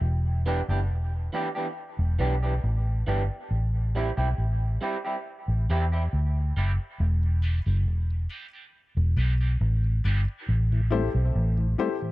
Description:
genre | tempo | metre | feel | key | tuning
reggae | 69 BPM | 4/4 | straight | E minor | A4 = 440 Hz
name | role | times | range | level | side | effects
vintage muted fingered electric bass | bass | 0.0-11.7 s | E1 to E2 | -23 LUFS | equal | none
electric guitar through a small old amp | accompaniment | 0.5-10.2 s | E3 to G4 | -33 LUFS | right 2 dB | high-pass filter, dub echo
mellow tonewheel organ | accompaniment | 7.2-12.1 s | E2 to D4 | -33 LUFS | left 3 dB | slow rotary speaker, high-pass filter, dub echo
dark concert grand piano | stabs | 7.4-11.9 s | E4 to D5 | -31 LUFS | left 6 dB | high-pass filter, dub echo
room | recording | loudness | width
little or no reverb | dark, warm production | -24 LUFS | side -18 dB against mid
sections
0.0-7.0 A section; 7.0-12.1 B section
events
filter sweep 3.5-10.5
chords
0.0 Em7; 3.5 Am7; 7.0 Em7; 10.5 Am7

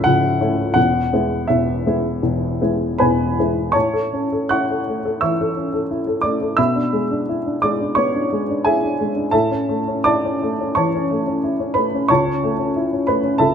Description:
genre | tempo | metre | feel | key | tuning
classical, romantic character piece for solo piano | 74-92 BPM | 4/4 | rubato | A major | A4 = 442 Hz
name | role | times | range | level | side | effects
warm upright piano | solo | 0.0-13.5 s | C#1 to F#6 | -16 LUFS | equal | none
room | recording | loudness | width
light reverb | close, detailed microphones | -17 LUFS | side -7 dB against mid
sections
0.0-3.7 A section; 3.7-13.5 B section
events
none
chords
0.0 A/C#; 0.8 E; 3.7 A; 6.6 E7/B; 9.3 A; 12.1 A/C#

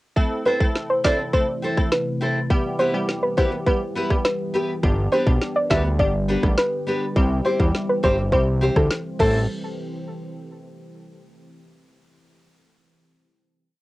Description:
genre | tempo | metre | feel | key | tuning
dancehall | 103 BPM | 4/4 | straight | A minor | A4 = 440 Hz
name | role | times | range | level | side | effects
wavetable chord stab | accompaniment | 0.2-9.4 s | G3 to A4 | -28 LUFS | equal | cassette tape
deep dark ambient pad | sustained chords | 0.8-9.5 s | C3 to G4 | -30 LUFS | equal | chorus, built-in reverb, sidechain pumping, cassette tape
island pop drum kit | drums | 0.2-9.3 s | crash cymbal, kick drum, rim click, snare drum | -21 LUFS | equal | cassette tape
soft round pluck | melody | 0.5-9.5 s | A4 to E5 | -23 LUFS | equal | chorus, analog delay
nylon-string guitar | arpeggios | 0.5-9.4 s | B3 to C5 | -24 LUFS | equal | cassette tape
fat analog bass | bass | 4.8-9.5 s | G1 to E2 | -22 LUFS | equal | none
room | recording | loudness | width
light reverb | home recording on cassette | -19 LUFS | side -18 dB against mid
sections
0.2-9.5 verse; 9.5-11.8 final hit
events
none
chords
0.2 Am; 2.5 Em; 4.8 G; 7.2 C; 9.2 Am; 9.5 N.C.

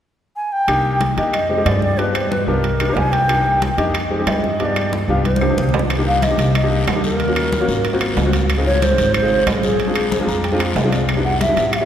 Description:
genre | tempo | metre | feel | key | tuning
Afro-Cuban jazz | 184 BPM | 4/4 | straight | C minor | A4 = 443 Hz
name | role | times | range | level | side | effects
bright bass bansuri | melody | 0.4-11.8 s | Ab4 to Ab5 | -20 LUFS | equal | none
warm baby grand piano | accompaniment | 0.7-11.8 s | G3 to Bb5 | -22 LUFS | left 2 dB | none
upright bass | bass | 0.7-11.8 s | Ab1 to G2 | -20 LUFS | equal | none
claves | percussion | 0.7-11.8 s | none | -32 LUFS | left 3 dB | none
congas | percussion | 0.7-11.8 s | none | -26 LUFS | left 1 dB | none
timbales | percussion | 0.7-11.8 s | none | -25 LUFS | right 4 dB | none
guiro | percussion | 5.9-11.8 s | none | -31 LUFS | left 4 dB | none
room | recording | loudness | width
wet cathedral reverb, RT60 4.8 s | recorded in a church or concert hall | -15 LUFS | side -10 dB against mid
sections
0.7-5.9 A section; 5.9-11.8 B section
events
drum fill 5.2-5.9; grand piano fill 10.1-11.1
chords
0.0 N.C.; 0.7 Cm7; 1.3 Fm9; 2.0 G7; 2.6 Cm7; 3.9 Fm9; 4.6 G7; 5.2 Cm9; 7.2 Ebm7; 7.8 Ab13; 8.5 Dbmaj9; 9.8 Bb9; 11.1 Cmaj9

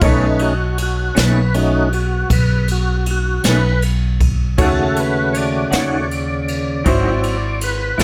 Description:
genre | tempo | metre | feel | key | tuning
slow blues | 53 BPM (dotted quarters) | 12/8 | straight | B mixolydian | A4 = 440 Hz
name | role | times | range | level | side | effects
bright baby grand piano | accompaniment | 0.0-8.0 s | D#4 to C#5 | -27 LUFS | equal | none
electric guitar through a small old amp | accompaniment | 0.0-8.0 s | G#2 to F#4 | -24 LUFS | equal | tremolo
tonewheel organ | sustained chords | 0.0-8.0 s | C#3 to D5 | -22 LUFS | equal | overdrive, chorus vibrato, slow rotary speaker
upright bass | bass | 0.0-8.0 s | G#1 to D#2 | -21 LUFS | equal | none
jazz brush drum kit | drums | 0.0-8.0 s | kick drum, ride cymbal, snare drum | -24 LUFS | equal | none
room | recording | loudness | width
light reverb | none | -17 LUFS | mono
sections
0.0-8.0 A section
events
tonewheel organ solo 0.0-8.0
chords
0.0 B9; 4.6 D#m7b5; 6.9 G#aug7

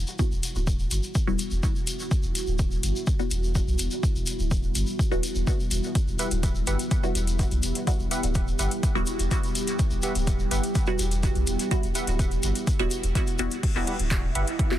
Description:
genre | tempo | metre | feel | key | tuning
dub techno | 125 BPM | 4/4 | straight | E minor | A4 = 440 Hz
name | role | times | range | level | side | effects
deep dark ambient pad | sustained chords | 0.0-14.8 s | G3 to G4 | -33 LUFS | equal | chorus, built-in reverb, sidechain pumping
warm sub bass | bass | 0.0-14.4 s | D1 to B1 | -28 LUFS | equal | sidechain pumping
tube shaker | percussion | 0.1-13.6 s | none | -36 LUFS | left 2 dB | none
filtered dub chord stab | stabs | 0.2-14.8 s | G3 to F#4 | -33 LUFS | equal | phaser, sidechain pumping, dub echo
electronic kick drum | drums | 0.2-14.7 s | none | -26 LUFS | equal | overdrive
soft vintage rhythm box | drums | 0.4-14.8 s | crash cymbal, handclaps, hi-hat | -31 LUFS | left 2 dB | overdrive
wavetable chord stab | riff | 6.2-14.4 s | G4 to F#5 | -35 LUFS | right 2 dB | sidechain pumping, dub echo
wind-like tuned noise texture | texture | 14.0-14.8 s | E4 | -36 LUFS | right 8 dB | built-in reverb, sidechain pumping
room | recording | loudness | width
digital ambience | dense, heavily limited modern master | -23 LUFS | side -12 dB against mid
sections
0.0-13.6 A section; 13.6-14.8 A section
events
filter sweep on synth stab 0.0-13.6, 13.6-14.8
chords
0.0 Emadd9

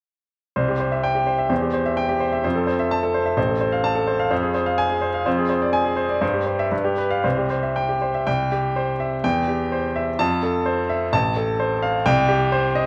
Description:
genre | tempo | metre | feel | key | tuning
classical, virtuoso piano study | 127 BPM | 2/4 | rubato | C major | A4 = 442 Hz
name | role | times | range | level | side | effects
clear baby grand piano | solo | 0.6-12.9 s | A1 to A5 | -21 LUFS | equal | none
room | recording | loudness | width
moderate recital hall reverb, RT60 1.6 s | dark, warm production | -21 LUFS | mono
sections
0.6-8.3 A section; 8.3-12.9 A section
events
none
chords
0.6 C; 1.5 C/E; 2.4 Fmaj7; 3.4 F/A; 4.3 Fm; 5.3 Dm7b5/F; 6.2 C/G; 6.7 G7; 7.2 C; 9.2 C/E; 10.2 Fmaj7; 11.1 F/A; 12.1 Cm

